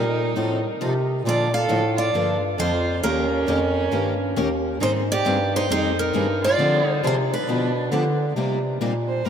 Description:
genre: acoustic string swing (jazz manouche)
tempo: 135 BPM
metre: 4/4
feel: swing 62% on 8ths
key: C minor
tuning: A4 = 440 Hz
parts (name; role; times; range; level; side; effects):
- picked steel-string acoustic guitar; melody; 0.0-8.2 s; Bb4 to F5; -25 LUFS; equal; none
- warm violin; second line; 0.0-9.3 s; Db4 to C5; -27 LUFS; right 3 dB; none
- picked steel-string acoustic guitar; accompaniment; 0.0-9.3 s; C3 to Bb4; -28 LUFS; left 4 dB; none
- picked swing-style acoustic guitar; accompaniment; 0.0-9.3 s; C3 to Bb4; -34 LUFS; right 7 dB; none
- clear bass clarinet; bass; 0.0-9.3 s; Eb2 to D3; -24 LUFS; equal; none
room: wet cathedral reverb, RT60 6.4 s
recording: in a vast, echoing space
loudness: -19 LUFS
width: side -8 dB against mid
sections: 0.0-8.4 A section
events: none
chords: 0.4 F7; 1.3 Bbmaj7; 3.0 Eb7; 4.8 Abmaj9; 6.6 Dm7b5; 7.5 G7; 8.4 Cm7

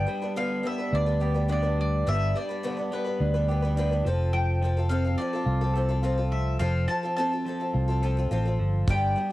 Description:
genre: folk rock and heartland rock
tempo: 106 BPM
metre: 4/4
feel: straight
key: unclear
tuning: A4 = 440 Hz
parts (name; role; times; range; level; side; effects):
- mandolin; melody; 0.0-9.3 s; B4 to A5; -32 LUFS; left 1 dB; cassette tape
- picked acoustic archtop guitar; accompaniment; 0.0-9.3 s; G2 to B4; -31 LUFS; left 1 dB; cassette tape
- electric guitar through a small old amp; riff; 0.0-9.3 s; G2 to A4; -32 LUFS; equal; cassette tape
- fingered electric bass; bass; 0.0-9.1 s; F1 to D2; -25 LUFS; equal; none
- damped 70s drum kit; drums; 8.9-9.0 s; hi-hat, kick drum; -25 LUFS; equal; cassette tape
room: light reverb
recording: home recording on cassette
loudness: -24 LUFS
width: side -16 dB against mid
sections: 0.0-9.3 A section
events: none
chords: 0.0 G; 4.1 F

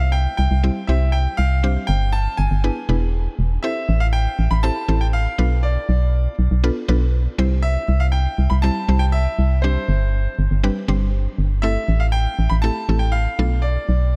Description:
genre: dance-pop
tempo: 120 BPM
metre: 4/4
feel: straight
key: A minor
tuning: A4 = 440 Hz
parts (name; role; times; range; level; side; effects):
- bright concert grand piano; melody; 0.0-14.2 s; C5 to B5; -28 LUFS; equal; tape echo
- mallet-like synth pluck; accompaniment; 0.0-14.2 s; G3 to C5; -30 LUFS; equal; chorus
- organ-like FM bass; bass; 0.0-14.2 s; E1 to C2; -20 LUFS; equal; none
room: light reverb, studio ambience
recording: none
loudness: -19 LUFS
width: mono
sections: 0.0-3.6 A section; 3.6-14.2 A section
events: drop 0.0-3.6, 3.6-14.2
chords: 0.0 C; 1.6 Gsus4; 2.6 E7; 3.6 Am7; 5.4 Bm7b5; 7.4 C; 9.6 Gsus4; 11.6 Am7; 13.4 Bm7b5

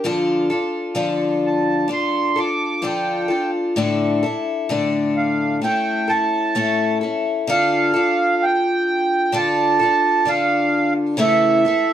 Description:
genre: folk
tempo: 65 BPM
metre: 4/4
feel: straight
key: D minor, D harmonic minor from 7.5 s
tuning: A4 = 440 Hz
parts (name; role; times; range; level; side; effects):
- picked twelve-string acoustic guitar; accompaniment; 0.0-11.9 s; A2 to A4; -19 LUFS; left 2 dB; none
- accordion; melody; 1.5-11.9 s; E5 to D6; -19 LUFS; right 4 dB; none
room: wet studio reverb, RT60 0.5 s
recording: none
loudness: -17 LUFS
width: side -10 dB against mid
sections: 0.0-7.5 A section; 7.5-11.9 B section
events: none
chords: 0.1 Dm; 3.8 Asus4; 5.6 A; 7.5 Dm; 11.2 A/C#

